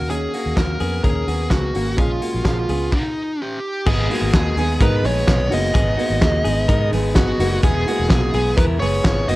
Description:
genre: jangly indie pop.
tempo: 127 BPM.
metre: 4/4.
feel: straight.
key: Eb minor.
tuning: A4 = 441 Hz.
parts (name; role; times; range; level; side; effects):
dark smooth lead guitar; melody; 0.0-9.4 s; Eb4 to Eb5; -23 LUFS; equal; overdrive, analog delay.
picked steel-string acoustic guitar; accompaniment; 0.0-9.4 s; Ab2 to Gb4; -26 LUFS; right 4 dB; none.
direct-recorded clean electric guitar; arpeggios; 0.0-9.4 s; Bb3 to Bb4; -25 LUFS; left 4 dB; spring reverb.
vintage muted fingered electric bass; bass; 0.0-9.4 s; E1 to Ab2; -22 LUFS; equal; none.
loose indie drum kit; drums; 0.1-9.4 s; crash cymbal, hi-hat, kick drum, ride cymbal, snare drum; -20 LUFS; equal; none.
room: little or no reverb.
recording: dark, warm production.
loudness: -16 LUFS.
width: side -18 dB against mid.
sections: 0.0-3.9 A section; 3.9-9.4 B section.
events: stop 2.9-3.9.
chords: 0.0 Ebm7; 2.0 Bbm7; 2.9 N.C.; 3.9 Abm; 7.6 E.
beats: | 0.10 0.57 1.04 1.51 | 1.98 2.45 2.92 3.40 | 3.87 4.34 4.81 5.28 | 5.75 6.22 6.69 7.16 | 7.63 8.11 8.58 9.05.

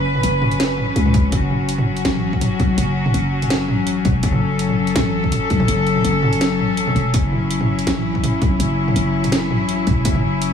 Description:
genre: half-time drum and bass.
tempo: 165 BPM.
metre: 4/4.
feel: swing 54% on 16ths, half-time.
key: F# minor.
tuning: A4 = 441 Hz.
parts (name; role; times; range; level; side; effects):
rich chamber cello section; sustained chords; 0.0-10.5 s; F#3 to B4; -20 LUFS; left 3 dB; sidechain pumping.
growling 808-style bass; bass; 0.0-10.5 s; E1 to C#2; -21 LUFS; equal; none.
drum and bass drum kit; drums; 0.2-10.5 s; hi-hat, snare drum, toms; -22 LUFS; right 1 dB; overdrive, small room ambience.
electronic kick drum; drums; 1.1-10.1 s; none; -20 LUFS; equal; small room ambience.
room: light reverb, digital ambience.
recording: none.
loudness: -16 LUFS.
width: side -7 dB against mid.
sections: 0.0-10.5 A section.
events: kick drops out 6.8-7.1.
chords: 0.0 F#m.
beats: 0.23 0.60 0.96 | 1.32 1.69 2.05 2.42 | 2.78 3.14 3.51 3.87 | 4.23 4.60 4.96 5.32 | 5.69 6.05 6.42 6.78 | 7.14 7.51 7.87 8.23 | 8.60 8.96 9.32 9.69 | 10.05 10.41.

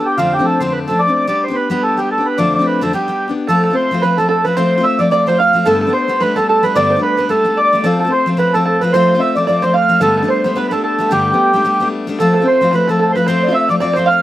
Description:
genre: celtic folk, Celtic reel.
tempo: 220 BPM.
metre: 4/4.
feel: swing 57% on 8ths.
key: unclear.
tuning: A4 = 440 Hz.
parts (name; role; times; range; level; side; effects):
mellow accordion; melody; 0.0-14.2 s; F4 to F5; -15 LUFS; right 1 dB; slapback echo.
picked steel-string acoustic guitar; accompaniment; 0.0-14.2 s; F2 to G4; -17 LUFS; left 2 dB; none.
mellow baroque flute; second line; 3.5-14.2 s; G4 to F5; -22 LUFS; left 2 dB; slapback echo.
open-back banjo; second line; 3.5-14.2 s; G4 to F5; -20 LUFS; right 5 dB; slapback echo.
room: little or no reverb.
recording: recorded outdoors, with no room sound.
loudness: -12 LUFS.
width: side -14 dB against mid.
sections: 0.0-3.5 A section; 3.5-12.2 B section; 12.2-14.2 B section.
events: none.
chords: 0.2 F6; 1.3 G; 2.4 F6; 2.9 G; 3.5 F; 5.7 Gadd9; 7.8 F; 10.0 Gadd9; 12.2 F.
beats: | 0.18 0.46 0.73 1.01 | 1.28 1.56 1.83 2.10 | 2.38 2.65 2.93 3.20 | 3.48 3.75 4.02 4.30 | 4.57 4.84 5.12 5.39 | 5.66 5.94 6.21 6.48 | 6.75 7.03 7.30 7.57 | 7.84 8.12 8.39 8.66 | 8.93 9.21 9.48 9.75 | 10.02 10.29 10.56 10.84 | 11.11 11.38 11.65 11.92 | 12.19 12.46 12.73 13.00 | 13.27 13.54 13.81 14.08.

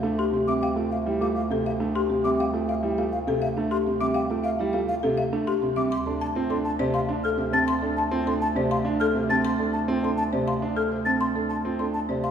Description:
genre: classical, minimalist pattern music.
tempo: 102 BPM.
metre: 3/4.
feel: straight.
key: D minor.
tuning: A4 = 440 Hz.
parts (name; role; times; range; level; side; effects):
folk marimba with medium hard mallets; melody; 0.0-12.3 s; G4 to C6; -29 LUFS; left 5 dB; none.
warm concert grand piano; accompaniment; 0.0-12.3 s; C3 to D4; -28 LUFS; equal; none.
buzzing marimba with soft mallets; arpeggios; 0.0-12.3 s; C4 to D5; -30 LUFS; right 6 dB; none.
clear bass clarinet; bass; 0.0-12.3 s; D2; -30 LUFS; right 2 dB; none.
mellow hollow concert flute; arpeggios; 0.2-12.3 s; E5 to A6; -30 LUFS; left 1 dB; none.
room: wet concert hall reverb, RT60 2.4 s.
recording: recorded in a church or concert hall.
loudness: -22 LUFS.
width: side -8 dB against mid.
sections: 0.0-12.3 A section.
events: none.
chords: 0.0 Dm9; 5.9 F/D.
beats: 0.04 | 0.62 1.21 1.80 | 2.39 2.98 3.56 | 4.15 4.74 5.33 | 5.92 6.50 7.09 | 7.68 8.27 8.86 | 9.45 10.04 10.62 | 11.21 11.80.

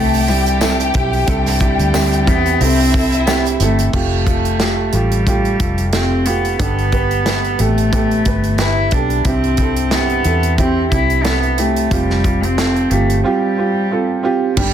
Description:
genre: piano-driven pop.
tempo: 90 BPM.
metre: 4/4.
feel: swing 56% on 16ths.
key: unclear.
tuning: A4 = 441 Hz.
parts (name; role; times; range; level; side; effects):
warm cello; melody; 0.0-14.7 s; G3 to E4; -19 LUFS; left 2 dB; none.
warm studio violin section; second line; 0.0-3.9 s; E4 to G5; -22 LUFS; left 4 dB; none.
warm upright piano; accompaniment; 0.0-14.7 s; G2 to B4; -19 LUFS; right 5 dB; none.
vintage muted fingered electric bass; bass; 0.0-14.7 s; F1 to E2; -18 LUFS; equal; none.
modern studio drum kit; drums; 0.1-14.7 s; crash cymbal, hi-hat, kick drum, snare drum; -20 LUFS; equal; none.
tambourine; percussion; 0.6-3.4 s; none; -30 LUFS; left 12 dB; none.
room: moderate large studio reverb, RT60 0.8 s.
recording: dense, heavily limited modern master.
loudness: -13 LUFS.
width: side -9 dB against mid.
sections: 0.0-3.9 A section; 3.9-14.6 B section.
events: none.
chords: 0.0 C; 3.9 Fadd9; 6.6 Gadd9; 9.3 C; 11.9 Fsus2.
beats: 0.61 | 1.28 1.94 2.60 3.27 | 3.93 4.60 5.26 5.93 | 6.59 7.26 7.92 8.59 | 9.25 9.92 10.58 11.25 | 11.91 12.58 13.24 13.91 | 14.57.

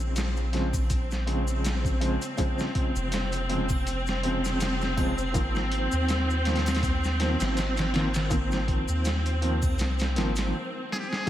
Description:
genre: trip hop.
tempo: 81 BPM.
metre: 4/4.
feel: swing 55% on 16ths.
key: unclear.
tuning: A4 = 440 Hz.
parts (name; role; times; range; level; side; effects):
felt-muted upright piano; accompaniment; 0.0-11.3 s; Db3 to C4; -31 LUFS; equal; tremolo, tape echo.
clear symphonic string section; sustained chords; 0.0-11.3 s; C4; -31 LUFS; equal; none.
soft dub sub bass; bass; 0.0-11.3 s; F1 to Eb2; -28 LUFS; equal; none.
boom bap sampler-style drum kit; drums; 0.2-11.3 s; hi-hat, kick drum, snare drum; -30 LUFS; equal; studio reverb.
maracas and triangle; percussion; 0.2-10.5 s; none; -43 LUFS; left 4 dB; none.
trumpet with metal mute; melody; 10.9-11.3 s; G4 to Ab4; -30 LUFS; equal; none.
room: moderate plate reverb, RT60 2.4 s.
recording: dreamy mix soaked in reverb, vinyl crackle.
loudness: -24 LUFS.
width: side -12 dB against mid.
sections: 0.0-11.3 A section.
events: break 10.5-11.3; drum fill 10.9-11.3.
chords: 0.0 Bbm7; 5.3 Ab69.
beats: 0.16 0.90 1.64 | 2.38 3.13 3.87 4.61 | 5.35 6.09 6.83 7.57 | 8.31 9.05 9.79 10.53 | 11.27.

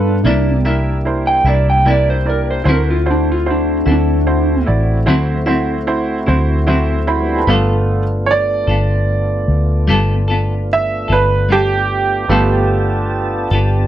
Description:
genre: slow blues.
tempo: 50 BPM (dotted quarters).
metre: 12/8.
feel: straight.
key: G mixolydian.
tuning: A4 = 439 Hz.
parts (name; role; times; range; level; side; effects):
electric guitar through a small old amp; melody; 0.0-4.7 s; D4 to G5; -17 LUFS; equal; none.
bright upright piano; accompaniment; 0.0-13.9 s; A3 to B5; -18 LUFS; right 4 dB; none.
mellow tonewheel organ; sustained chords; 0.0-13.9 s; G3 to A5; -24 LUFS; equal; overdrive, chorus vibrato, slow rotary speaker.
vintage muted fingered electric bass; bass; 0.0-13.9 s; G1 to G2; -16 LUFS; equal; none.
clean electric guitar; accompaniment; 0.2-13.8 s; C3 to A4; -19 LUFS; left 2 dB; tremolo.
room: moderate studio reverb, RT60 0.6 s.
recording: dark, warm production.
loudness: -13 LUFS.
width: side -12 dB against mid.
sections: 0.0-7.5 A section; 7.5-13.9 A section.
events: clean electric guitar solo 0.0-7.5; upright piano fill 6.3-7.5; upright piano solo 7.5-13.9.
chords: 0.2 C9; 2.7 D9; 7.5 G9.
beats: 0.25 1.46 | 2.66 3.87 5.07 6.28 | 7.48 8.69 9.89 11.10 | 12.30 13.51.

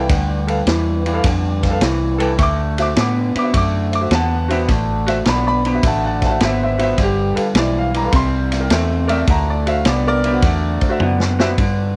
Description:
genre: electric blues shuffle.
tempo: 104 BPM.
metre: 4/4.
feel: swing 68% on 8ths.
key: unclear.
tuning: A4 = 441 Hz.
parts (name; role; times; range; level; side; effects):
warm concert grand piano; accompaniment; 0.0-11.5 s; F#4 to D6; -24 LUFS; equal; none.
electric guitar through a small old amp; riff; 0.0-12.0 s; G2 to B3; -23 LUFS; equal; subtle chorus.
vintage muted fingered electric bass; bass; 0.0-12.0 s; G1 to A2; -23 LUFS; equal; none.
vintage drum kit; drums; 0.1-11.8 s; kick drum, ride cymbal, snare drum, toms; -23 LUFS; equal; none.
room: light reverb, small room reverb.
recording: none.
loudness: -17 LUFS.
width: mono.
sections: 0.0-11.6 A section.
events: drum fill 11.0-11.6.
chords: 0.0 G9; 2.4 D9; 7.0 G9; 8.1 C9; 9.3 D9.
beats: | 0.10 0.67 1.25 1.82 | 2.39 2.97 3.54 4.11 | 4.69 5.26 5.84 6.41 | 6.99 7.56 8.13 8.71 | 9.28 9.86 10.44 11.01 | 11.59.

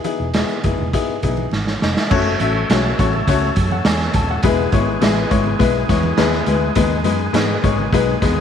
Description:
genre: uptempo 1960s-style soul.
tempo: 103 BPM.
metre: 4/4.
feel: straight.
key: F# dorian.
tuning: A4 = 440 Hz.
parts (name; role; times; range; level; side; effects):
clear upright piano; accompaniment; 0.0-8.4 s; G#3 to A5; -19 LUFS; left 7 dB; none.
raw garage drum kit; drums; 0.0-8.4 s; crash cymbal, hi-hat, kick drum, snare drum; -19 LUFS; right 2 dB; none.
congas; percussion; 0.0-8.4 s; none; -31 LUFS; right 8 dB; none.
vintage muted fingered electric bass; bass; 0.2-8.4 s; D#1 to G#2; -22 LUFS; right 1 dB; none.
overdriven tonewheel organ; sustained chords; 2.1-8.4 s; D#3 to A4; -26 LUFS; right 2 dB; slow rotary speaker.
room: moderate echo chamber reverb, RT60 2.1 s.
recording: 1960s-style stereo with parts hard left and right, vinyl crackle.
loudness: -15 LUFS.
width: side -8 dB against mid.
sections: 0.0-2.1 A section; 2.1-8.4 B section.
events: drum fill 1.5-2.1.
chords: 0.0 Emaj7; 2.1 F#m; 4.4 E; 6.8 G#m.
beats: 0.34 0.93 1.51 | 2.10 2.69 3.27 3.85 | 4.44 5.02 5.60 6.18 | 6.76 7.34 7.92.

